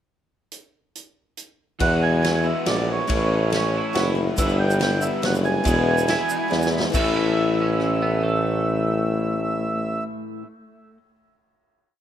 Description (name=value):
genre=folk rock and heartland rock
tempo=140 BPM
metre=3/4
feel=straight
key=A major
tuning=A4 = 440 Hz
part: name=vintage drum kit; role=drums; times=0.5-7.9 s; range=crash cymbal, hi-hat, kick drum, ride cymbal, rim click, snare drum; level=-28 LUFS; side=equal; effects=none
part: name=mellow accordion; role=melody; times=1.8-10.0 s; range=C#5 to G#5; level=-26 LUFS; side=right 4 dB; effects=none
part: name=dark baby grand piano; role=accompaniment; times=1.8-10.0 s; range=F#4 to F#5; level=-36 LUFS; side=right 3 dB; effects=none
part: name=picked swing-style acoustic guitar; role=accompaniment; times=1.8-10.5 s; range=E2 to F#4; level=-28 LUFS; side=left 8 dB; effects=none
part: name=crunchy overdriven guitar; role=riff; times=1.8-10.5 s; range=E2 to G#4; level=-28 LUFS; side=equal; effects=none
part: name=warm tuba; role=bass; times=1.8-10.0 s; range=E1 to E2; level=-23 LUFS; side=equal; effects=none
part: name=twelve-string electric guitar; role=second line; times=3.6-11.0 s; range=A3 to E4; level=-34 LUFS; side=right 3 dB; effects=lush chorus
part: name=tube shaker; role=percussion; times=4.4-7.1 s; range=none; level=-36 LUFS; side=right 4 dB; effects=none
room=light reverb, small room ambience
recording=rough home demo mix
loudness=-19 LUFS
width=side -10 dB against mid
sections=0.5-1.8 pickup bar; 1.8-6.9 pre-chorus; 6.9-9.5 final chord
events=drum fill 6.5-6.9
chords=0.5 N.C.; 1.8 Eadd9; 3.1 A; 4.4 G6; 5.7 E; 6.9 A